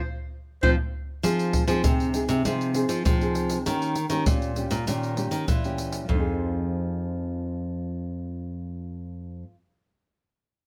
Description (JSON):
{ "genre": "samba and choro", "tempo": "99 BPM", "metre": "4/4", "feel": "straight", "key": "F minor", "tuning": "A4 = 439 Hz", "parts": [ { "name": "clear clarinet", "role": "melody", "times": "0.6-0.7 s", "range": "C5", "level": "-29 LUFS", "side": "equal", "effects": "none" }, { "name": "nylon-string guitar", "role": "accompaniment", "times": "0.6-9.7 s", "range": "Bb2 to Ab4", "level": "-32 LUFS", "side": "equal", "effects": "none" }, { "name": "nylon-string guitar", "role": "bass", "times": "0.6-9.4 s", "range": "F2 to F3", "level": "-30 LUFS", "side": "equal", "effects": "none" }, { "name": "surdo, egg shaker and pandeiro", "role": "percussion", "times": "0.6-6.2 s", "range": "none", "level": "-29 LUFS", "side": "equal", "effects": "none" } ], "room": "light reverb", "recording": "none", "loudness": "-26 LUFS", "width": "mono", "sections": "0.0-1.2 A section; 1.2-6.1 B section; 6.1-8.5 C section", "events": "band accent 0.0-1.2; drum fill 0.0-1.2", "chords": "0.0 F7(no3); 1.2 Fm7; 3.7 Eb7; 6.1 Fm7", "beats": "0.02 0.63 | 1.24 1.84 2.45 3.05 | 3.66 4.27 4.87 5.48 | 6.09 6.70 7.30 7.91" }